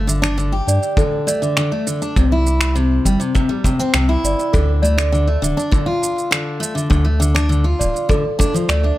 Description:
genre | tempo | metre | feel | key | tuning
folktronica | 101 BPM | 4/4 | straight | D minor | A4 = 439 Hz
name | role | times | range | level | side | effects
picked steel-string acoustic guitar | arpeggios | 0.0-9.0 s | C3 to G4 | -19 LUFS | left 1 dB | digital delay
warm sub bass | bass | 0.0-8.9 s | D1 to G2 | -17 LUFS | equal | none
electronic shaker and finger snaps | drums | 0.1-8.8 s | none | -21 LUFS | right 2 dB | overdrive
celesta | second line | 0.7-9.0 s | A4 to D5 | -22 LUFS | right 2 dB | digital delay
kick drum | drums | 1.0-8.5 s | none | -19 LUFS | equal | none
room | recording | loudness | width
light reverb, small room reverb | none | -15 LUFS | side -15 dB against mid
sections
0.0-9.0 A section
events
none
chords
0.0 Gsus2; 2.2 C; 4.5 Dm

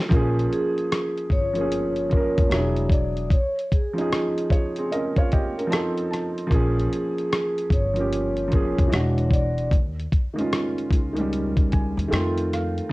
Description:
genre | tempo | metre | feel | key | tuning
lo-fi hip hop | 75 BPM | 4/4 | swing 64% on 16ths | Bb dorian | A4 = 441 Hz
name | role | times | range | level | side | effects
felt-muted upright piano | accompaniment | 0.0-12.9 s | Eb3 to A5 | -25 LUFS | right 1 dB | low-pass filter, cassette tape
upright bass | bass | 0.1-12.8 s | E1 to F2 | -26 LUFS | equal | transformer saturation
dusty soul sampler-style drum kit | drums | 0.1-12.9 s | hi-hat, kick drum, rim click | -22 LUFS | equal | cassette tape
vibraphone with soft mallets | melody | 0.5-9.7 s | Ab4 to D5 | -28 LUFS | left 1 dB | low-pass filter, cassette tape
room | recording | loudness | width
light reverb | home recording on cassette | -20 LUFS | side -20 dB against mid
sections
0.1-12.9 A section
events
none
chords
0.1 Bbm7; 2.5 E9; 3.3 Eb9sus4; 5.7 F7; 6.5 Bbm7; 8.9 E9; 9.7 Eb9sus4; 12.1 F7

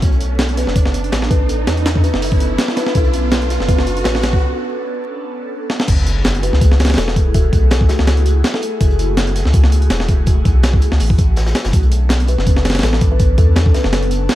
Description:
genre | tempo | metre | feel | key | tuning
drum and bass, jungle | 164 BPM | 4/4 | swing 54% on 16ths | F# minor | A4 = 442 Hz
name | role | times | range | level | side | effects
airy breathy pad | sustained chords | 0.0-14.3 s | A3 to A4 | -25 LUFS | right 1 dB | chorus, phaser, vintage 12-bit sampler grit
soft dub sub bass | bass | 0.0-14.3 s | E1 to E2 | -16 LUFS | equal | none
breakbeat sampler-style drum kit | drums | 0.0-14.3 s | crash cymbal, hi-hat, kick drum, snare drum | -15 LUFS | equal | studio reverb
crunchy breakbeat drum kit | drums | 0.0-14.3 s | hi-hat, snare drum | -31 LUFS | left 2 dB | none
riser and sub drop | sound effects | 0.0-7.3 s | none | -25 LUFS | right 1 dB | none
kalimba | melody | 0.6-8.7, 12.3-14.0 s | F#4 to B4 | -24 LUFS | left 2 dB | dub echo
room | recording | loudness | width
small room ambience | vinyl crackle | -12 LUFS | side -14 dB against mid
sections
0.0-5.9 A section; 5.9-14.3 B section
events
build-up 0.0-5.9; riser 0.0-4.4; filter sweep on kalimba 0.0-5.9; break 4.4-5.9; drum fill 5.7; drop 5.9-14.3; impact 5.9-7.3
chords
0.0 Bm9; 5.9 F#m9; 11.7 Bm9

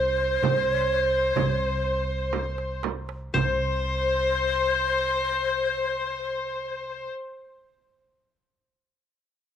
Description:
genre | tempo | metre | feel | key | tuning
Turkish makam ensemble | 58-66 BPM | 4/4 | straight | unclear | A4 = 443 Hz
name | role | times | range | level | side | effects
qanun | melody | 0.0-7.1 s | Bb4 to C5 | -32 LUFS | left 3 dB | none
breathy ney | second line | 0.0-7.1 s | C5 | -29 LUFS | left 7 dB | none
rich chamber violin section | second line | 0.0-7.1 s | C5 | -26 LUFS | equal | none
upright bass | bass | 0.0-7.1 s | C2 | -32 LUFS | equal | none
darbuka | percussion | 0.2-3.8 s | none | -31 LUFS | right 7 dB | none
frame drum | percussion | 0.4-3.8 s | none | -31 LUFS | right 11 dB | none
room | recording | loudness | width
wet spring reverb, RT60 1.9 s, studio reverb | 1960s-style stereo with parts hard left and right | -23 LUFS | side -9 dB against mid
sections
0.0-3.3 A section; 3.3-7.5 B section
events
slowing down 0.0-3.3; drum fill 2.3-3.3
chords
none

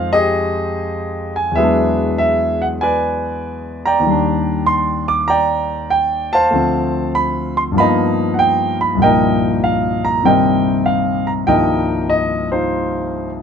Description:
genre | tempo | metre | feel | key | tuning
solo jazz | 97 BPM | 4/4 | swing 67% on 8ths | C minor | A4 = 440 Hz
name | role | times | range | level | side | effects
warm concert grand piano | solo | 0.0-13.4 s | C2 to D6 | -14 LUFS | equal | none
room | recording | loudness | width
little or no reverb | close, detailed microphones | -14 LUFS | side -7 dB against mid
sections
0.0-13.4 A section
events
none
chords
0.0 Fm9; 1.6 E9; 4.0 Ebmaj7; 6.5 Dm7; 7.8 G7alt; 9.0 Cm7

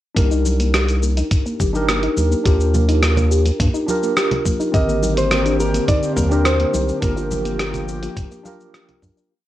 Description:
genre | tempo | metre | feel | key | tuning
sunset chillout | 105 BPM | 4/4 | straight | C minor | A4 = 442 Hz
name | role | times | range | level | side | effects
tine electric piano | accompaniment | 0.1-9.3 s | D3 to Bb4 | -23 LUFS | moving between left 4 dB and right 4 dB | fast stereo tremolo, auto-pan, cassette tape, tape echo, plate reverb
soft round pluck | arpeggios | 0.2-9.3 s | Bb3 to F5 | -26 LUFS | left 2 dB | analog chorus, cassette tape, tape echo, plate reverb
round analog bass | bass | 0.2-9.1 s | F1 to G2 | -19 LUFS | equal | none
dusty soul sampler-style drum kit | drums | 0.2-9.3 s | hi-hat, rim click, shaker | -24 LUFS | equal | cassette tape
electronic kick drum | drums | 0.2-9.1 s | none | -19 LUFS | equal | cassette tape
congas | percussion | 0.5-9.1 s | none | -29 LUFS | equal | none
nylon-string guitar | melody | 4.7-8.7 s | Bb4 to Eb5 | -23 LUFS | equal | cassette tape, tape echo, plate reverb
airy breathy pad | sustained chords | 4.7-9.3 s | D3 to G4 | -26 LUFS | left 1 dB | chorus, cassette tape, plate reverb
room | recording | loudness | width
light reverb | home recording on cassette | -16 LUFS | side -13 dB against mid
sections
0.2-9.3 groove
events
fade-out 6.3-9.3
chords
0.2 Cm7; 2.5 Ebmaj7; 4.7 Abmaj9#11; 7.0 Gm7

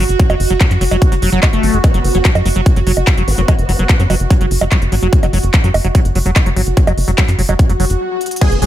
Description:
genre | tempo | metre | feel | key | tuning
psychedelic trance | 146 BPM | 4/4 | straight | unclear | A4 = 438 Hz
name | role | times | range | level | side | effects
evolving wavetable pad | sustained chords | 0.0-8.7 s | F#4 | -22 LUFS | right 4 dB | phaser, built-in reverb, sidechain pumping
liquid acid bass | riff | 0.0-8.7 s | F#3 to F#4 | -21 LUFS | moving between left 6 dB and right 4 dB | chorus, auto-pan, cassette tape, sidechain pumping, dub echo
tight sequencer bass | bass | 0.0-8.7 s | F#1 to F#2 | -15 LUFS | equal | none
big-room dance drum kit | drums | 0.1-8.7 s | bongos, crash cymbal, handclaps, hi-hat | -20 LUFS | right 2 dB | none
electronic kick drum | drums | 0.2-8.5 s | none | -12 LUFS | equal | none
formant-sweep wobble bass | second line | 1.8-4.2, 8.4-8.7 s | B3 | -29 LUFS | left 2 dB | chorus, sidechain pumping, high-pass filter, ping-pong delay
swell and impact | sound effects | 7.7-8.7 s | none | -21 LUFS | left 3 dB | none
dense compressed supersaw | melody | 8.4-8.7 s | G#4 | -18 LUFS | equal | phaser, vintage 12-bit sampler grit, sidechain pumping
room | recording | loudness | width
digital ambience | faint mains hum | -11 LUFS | side -12 dB against mid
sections
0.0-8.4 A section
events
swell 7.7-8.4; stop 8.0-8.4; drum fill 8.2; impact 8.4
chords
none

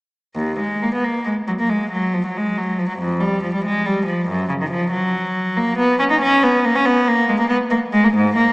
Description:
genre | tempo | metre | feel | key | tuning
classical, baroque-style suite movement for unaccompanied cello | 92 BPM (dotted quarters) | 12/8 | rubato | unclear | A4 = 440 Hz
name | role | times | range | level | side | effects
rich cello | solo | 0.4-8.5 s | Eb2 to Eb4 | -16 LUFS | equal | none
room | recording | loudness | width
wet concert hall reverb, RT60 1.8 s | small speaker sound | -16 LUFS | side -34 dB against mid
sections
0.4-8.5 A section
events
none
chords
none

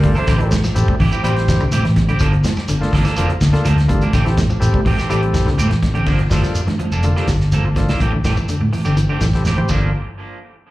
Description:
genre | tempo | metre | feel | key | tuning
afrobeat | 124 BPM | 4/4 | straight | G dorian | A4 = 439 Hz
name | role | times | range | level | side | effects
breathy trumpet | melody | 0.0-0.6 s | Bb4 to C5 | -27 LUFS | right 2 dB | plate reverb, slapback echo
bright alto saxophone | second line | 0.0-0.6 s | G3 to A3 | -31 LUFS | right 1 dB | plate reverb, slapback echo
edgy baritone saxophone | second line | 0.0-0.6 s | Bb2 to C3 | -33 LUFS | left 3 dB | plate reverb, slapback echo
percussive tonewheel organ | accompaniment | 0.0-9.9 s | Bb3 to C5 | -26 LUFS | left 1 dB | overdrive, plate reverb, slapback echo
electric guitar at the edge of break-up | arpeggios | 0.0-9.8 s | G2 to G3 | -24 LUFS | left 3 dB | none
electric guitar at the edge of break-up | stabs | 0.0-9.9 s | E3 to A4 | -25 LUFS | right 4 dB | plate reverb, slapback echo, analog delay
fingered electric bass | bass | 0.0-9.9 s | F1 to A2 | -17 LUFS | equal | none
warm soul drum kit | drums | 0.0-9.8 s | crash cymbal, hi-hat, kick drum, snare drum, toms | -21 LUFS | equal | none
congas | percussion | 0.0-9.8 s | none | -25 LUFS | right 2 dB | none
shekere | percussion | 0.0-9.8 s | none | -26 LUFS | equal | none
room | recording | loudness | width
light reverb | live gig heard through the venue's PA, club reverb | -14 LUFS | side -17 dB against mid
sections
0.0-6.1 A section; 6.1-9.9 B section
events
drum fill 5.6-6.1, 9.5-9.9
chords
0.3 Am7; 2.2 Gm9; 4.1 Am7; 6.1 Gm9; 8.0 Am7; 9.7 Gm9; 9.9 N.C.

